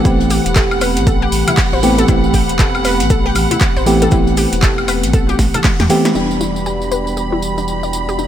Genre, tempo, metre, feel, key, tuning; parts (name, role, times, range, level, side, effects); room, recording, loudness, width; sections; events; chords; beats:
deep house; 118 BPM; 4/4; swing 61% on 16ths; A4 = 440 Hz
mellow FM electric piano; stabs; 0.0-8.3 s; E3 to G4; -17 LUFS; equal; chorus, cassette tape, sidechain pumping, low-pass filter, dub echo
deep dark ambient pad; texture; 0.1-8.3 s; E4 to B5; -25 LUFS; right 2 dB; chorus, built-in reverb, sidechain pumping
warm symphonic violin section; texture; 0.0-8.3 s; F#5 to B5; -25 LUFS; right 3 dB
analog pluck; arpeggios; 0.1-8.2 s; D4 to D5; -23 LUFS; left 3 dB; chorus, sidechain pumping, dub echo
round analog bass; bass; 0.1-8.3 s; E1 to E2; -20 LUFS; equal; sidechain pumping
deep house drum kit; drums; 0.1-8.3 s; handclaps, hi-hat, snare drum, tambourine, woodblock; -21 LUFS; equal; overdrive, small room ambience
electronic kick drum; drums; 0.1-5.8 s; -15 LUFS; equal; overdrive, small room ambience
unplugged drum kit; drums; 0.1-6.0 s; hi-hat, shaker, snare drum; -30 LUFS; left 1 dB
congas and bongos; percussion; 1.5-6.1 s; -27 LUFS; left 2 dB
dark analog pad; sustained chords; 6.2-8.3 s; D5 to B5; -26 LUFS; right 2 dB; chorus, vintage 12-bit sampler grit, sidechain pumping
light reverb; -12 LUFS; side -10 dB against mid
0.0-6.2 A section; 6.2-8.3 B section
drum fill 5.4-6.2; band accent 6.0; filter sweep on FM electric piano 6.2-8.3; filter sweep on synth arpeggio sound 6.2-8.3
0.0 Am9; 6.2 Em7
| 0.05 0.56 1.07 1.58 | 2.08 2.59 3.10 3.61 | 4.12 4.63 5.13 5.64 | 6.15 6.66 7.17 7.68 | 8.19